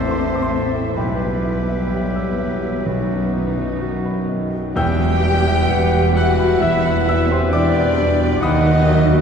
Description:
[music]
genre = classical, romantic movement for piano and orchestra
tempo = 63-68 BPM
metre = 4/4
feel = rubato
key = E minor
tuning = A4 = 440 Hz
[part]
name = clear concert grand piano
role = melody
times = 0.0-9.2 s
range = A1 to G6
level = -20 LUFS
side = left 1 dB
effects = none
[part]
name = rich symphonic violin section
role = melody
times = 0.0-9.2 s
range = B4 to G5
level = -30 LUFS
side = left 3 dB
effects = none
[part]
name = clear clarinet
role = second line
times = 0.0-9.2 s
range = B4 to G5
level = -29 LUFS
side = left 2 dB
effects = none
[part]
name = hollow concert flute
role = second line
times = 0.0-9.2 s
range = C5 to G5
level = -28 LUFS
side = left 2 dB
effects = none
[part]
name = rich symphonic violin section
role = second line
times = 0.0-9.2 s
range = B4 to G5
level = -30 LUFS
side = left 1 dB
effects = none
[part]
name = warm oboe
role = second line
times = 0.0-9.2 s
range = F#4 to B4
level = -31 LUFS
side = right 1 dB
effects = none
[part]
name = clear symphonic viola section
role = accompaniment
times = 0.0-9.2 s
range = C3 to G4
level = -29 LUFS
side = right 1 dB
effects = none
[part]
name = mellow bassoon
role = accompaniment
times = 0.0-9.2 s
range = D#3 to F#3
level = -30 LUFS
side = right 2 dB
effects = none
[part]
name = dark French horn section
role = sustained chords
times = 0.0-9.2 s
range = B3 to G4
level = -27 LUFS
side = left 5 dB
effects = none
[part]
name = dark trombone section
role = sustained chords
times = 0.0-9.2 s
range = D#3 to B3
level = -28 LUFS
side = right 2 dB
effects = none
[part]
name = dark symphonic cello section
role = bass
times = 0.0-9.2 s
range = E2 to C4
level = -25 LUFS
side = right 3 dB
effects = none
[part]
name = rich symphonic double bass section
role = bass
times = 0.0-9.2 s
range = E1 to D#2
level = -25 LUFS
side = right 3 dB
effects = none
[part]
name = timpani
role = percussion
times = 2.9-6.1 s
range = E2 to B2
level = -30 LUFS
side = left 1 dB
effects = none
[sound]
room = wet cathedral reverb, RT60 4.4 s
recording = dark, warm production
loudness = -16 LUFS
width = side -6 dB against mid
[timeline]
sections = 0.0-4.8 A section; 4.8-9.2 B section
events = none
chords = 0.0 Am; 1.0 Em/B; 2.9 B; 4.8 Em; 8.4 B/D#

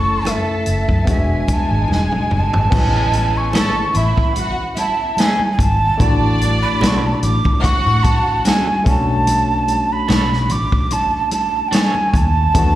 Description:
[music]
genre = lush 1970s-style soul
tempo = 73 BPM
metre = 4/4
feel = swing 54% on 16ths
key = B dorian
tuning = A4 = 440 Hz
[part]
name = breathy mellow jazz flute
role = melody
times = 0.0-12.8 s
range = E5 to D6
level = -19 LUFS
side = right 2 dB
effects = slapback echo
[part]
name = warm studio violin section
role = second line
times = 0.0-8.4 s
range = G#3 to A5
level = -24 LUFS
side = equal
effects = slapback echo
[part]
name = barky tine electric piano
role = accompaniment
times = 0.0-12.8 s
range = G#3 to A4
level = -25 LUFS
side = left 2 dB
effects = overdrive, medium stereo tremolo, slapback echo
[part]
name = vintage muted fingered electric bass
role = bass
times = 0.0-12.8 s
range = E1 to A2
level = -18 LUFS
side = equal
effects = none
[part]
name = vintage drum kit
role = drums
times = 0.3-12.8 s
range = crash cymbal, hi-hat, kick drum, rim click, snare drum, toms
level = -18 LUFS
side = equal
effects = none
[part]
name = congas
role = percussion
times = 0.3-12.8 s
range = none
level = -27 LUFS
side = right 2 dB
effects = slapback echo
[part]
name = electric guitar at the edge of break-up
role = riff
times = 3.5-11.9 s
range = A3 to C#5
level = -24 LUFS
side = right 4 dB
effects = tremolo, slapback echo
[sound]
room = light reverb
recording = live gig heard through the venue's PA, recital hall reverb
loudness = -14 LUFS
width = side -14 dB against mid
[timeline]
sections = 0.0-2.7 A section; 2.7-12.8 B section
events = drum fill 1.9-2.7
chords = 0.0 F#m7; 1.1 E7; 2.7 Amaj7; 6.0 Dmaj7/A; 8.9 Bm9

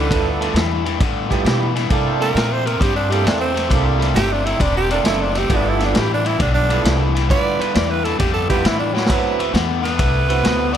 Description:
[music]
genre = electric blues shuffle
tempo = 134 BPM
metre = 4/4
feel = swing 68% on 8ths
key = G mixolydian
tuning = A4 = 440 Hz
[part]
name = growling tenor saxophone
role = second line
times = 0.0-10.8 s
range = D3 to D5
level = -22 LUFS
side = right 4 dB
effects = none
[part]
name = overdriven electric guitar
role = riff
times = 0.0-10.8 s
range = G2 to B3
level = -21 LUFS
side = left 5 dB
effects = none
[part]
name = upright bass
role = bass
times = 0.0-10.8 s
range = E1 to C3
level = -22 LUFS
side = equal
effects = none
[part]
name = mellow horn section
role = stabs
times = 0.1-10.7 s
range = G3 to B4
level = -24 LUFS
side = right 12 dB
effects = none
[part]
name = vintage drum kit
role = drums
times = 0.1-10.8 s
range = kick drum, ride cymbal, snare drum, splash cymbal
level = -21 LUFS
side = equal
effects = none
[sound]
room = little or no reverb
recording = none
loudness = -15 LUFS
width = side -9 dB against mid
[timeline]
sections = 0.0-10.8 A section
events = tenor saxophone solo 0.0-10.8; drum fill 8.9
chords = 0.0 G13; 1.9 C13; 5.5 G13; 9.1 D13

